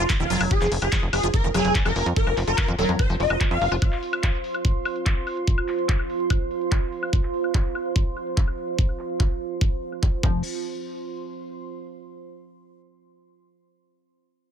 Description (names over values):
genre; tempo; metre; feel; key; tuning
psychedelic trance; 145 BPM; 4/4; straight; unclear; A4 = 440 Hz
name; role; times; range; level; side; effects
swarming rave lead; melody; 0.0-3.7 s; F4 to F5; -25 LUFS; left 1 dB; chorus, phaser, sidechain pumping, ping-pong delay
liquid acid bass; riff; 0.0-3.8, 10.2-10.4 s; Eb3 to F4; -29 LUFS; moving between left 6 dB and right 3 dB; phaser, auto-pan, sidechain pumping, ping-pong delay
tight sequencer bass; bass; 0.0-3.8, 10.2-10.4 s; Eb1 to F2; -25 LUFS; equal; tube saturation
deep dark ambient pad; texture; 0.1-12.1 s; F4 to C6; -30 LUFS; right 4 dB; chorus, built-in reverb, sidechain pumping
big-room dance drum kit; drums; 0.1-10.3 s; crash cymbal, handclaps, hi-hat, woodblock; -30 LUFS; left 2 dB; low-pass filter on snare, low-pass filter on hats, low-pass filter on perc, low-pass filter on cymbals
electronic kick drum; drums; 0.1-10.3 s; none; -22 LUFS; equal; none
room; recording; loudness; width
light reverb; none; -21 LUFS; side -8 dB against mid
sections
0.0-10.4 A section; 10.4-12.1 B section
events
filter sweep on drum 0.0-10.4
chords
0.0 F5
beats
0.10 | 0.51 0.92 1.34 1.75 | 2.17 2.58 2.99 3.41 | 3.82 4.23 4.65 5.06 | 5.47 5.89 6.30 6.72 | 7.13 7.54 7.96 8.37 | 8.79 9.20 9.61 10.03 | 10.44 10.85 11.27 11.68